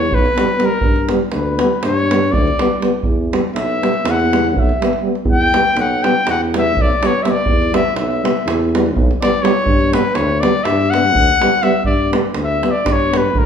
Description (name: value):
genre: balkan folk, Balkan brass band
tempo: 245 BPM (eighths)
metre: 9/8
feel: straight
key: E dorian sharp4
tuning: A4 = 439 Hz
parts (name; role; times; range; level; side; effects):
- clear trumpet; melody; 0.0-13.5 s; A#4 to G5; -17 LUFS; left 2 dB; none
- warm tuba; bass; 0.0-13.5 s; B1 to G2; -20 LUFS; equal; none
- davul; percussion; 0.0-13.5 s; none; -20 LUFS; right 2 dB; none
- mellow euphonium; accompaniment; 0.4-13.2 s; B3; -22 LUFS; left 5 dB; none
- mellow euphonium; accompaniment; 0.4-13.2 s; G3; -22 LUFS; right 5 dB; none
room: wet large studio reverb, RT60 1.2 s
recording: band playing live in one room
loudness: -13 LUFS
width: side -7 dB against mid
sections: 0.0-13.5 A section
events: trumpet solo 0.0-13.5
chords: 0.0 Em; 0.8 G; 3.0 Em; 9.7 G